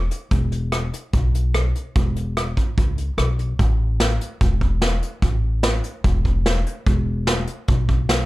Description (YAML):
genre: honky-tonk and classic country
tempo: 147 BPM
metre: 4/4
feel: straight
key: A major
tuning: A4 = 440 Hz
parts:
  - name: upright bass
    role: bass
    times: 0.0-8.3 s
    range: E1 to C#2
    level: -21 LUFS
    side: equal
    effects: none
  - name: soft brush drum kit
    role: drums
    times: 0.1-8.2 s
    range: hi-hat, kick drum, rim click, snare drum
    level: -21 LUFS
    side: right 1 dB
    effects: none
room: little or no reverb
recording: none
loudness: -18 LUFS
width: side -18 dB against mid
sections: 0.0-3.6 A section; 3.6-8.3 B section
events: none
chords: none